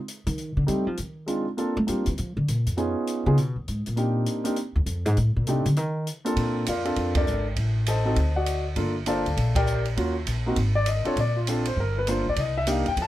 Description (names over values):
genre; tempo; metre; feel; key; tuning
jazz piano trio; 200 BPM; 4/4; swing 63% on 8ths; Bb major; A4 = 440 Hz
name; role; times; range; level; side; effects
open jazz drum kit; drums; 0.1-13.1 s; hi-hat, kick drum, ride cymbal; -32 LUFS; right 2 dB; none
upright bass; bass; 0.3-13.1 s; G1 to A3; -25 LUFS; equal; none
warm concert grand piano; melody; 0.7-13.1 s; G3 to A5; -26 LUFS; equal; none
room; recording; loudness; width
little or no reverb; close, detailed microphones; -23 LUFS; side -14 dB against mid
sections
0.0-6.4 A section; 6.4-13.1 B section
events
upright bass solo 0.0-6.4; band accent 7.1, 9.5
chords
0.4 Am7b5; 1.0 Ab; 1.6 Gm11; 2.8 Db9; 4.0 Cm9; 5.2 F13 (rootless); 6.4 Bbmaj7; 7.6 Adim; 8.2 D7b9; 8.8 Gm9; 10.0 Ebm7; 10.6 Ab5; 11.2 Bbmaj7; 11.8 Gm7; 12.4 Cm7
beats
0.07 | 0.38 0.67 0.97 1.27 | 1.57 1.87 2.17 2.47 | 2.77 3.07 3.37 3.67 | 3.97 4.27 4.57 4.87 | 5.17 5.47 5.76 6.07 | 6.37 6.67 6.96 7.26 | 7.57 7.87 8.16 8.46 | 8.77 9.06 9.37 9.66 | 9.96 10.27 10.56 10.87 | 11.16 11.46 11.76 12.06 | 12.36 12.66 12.96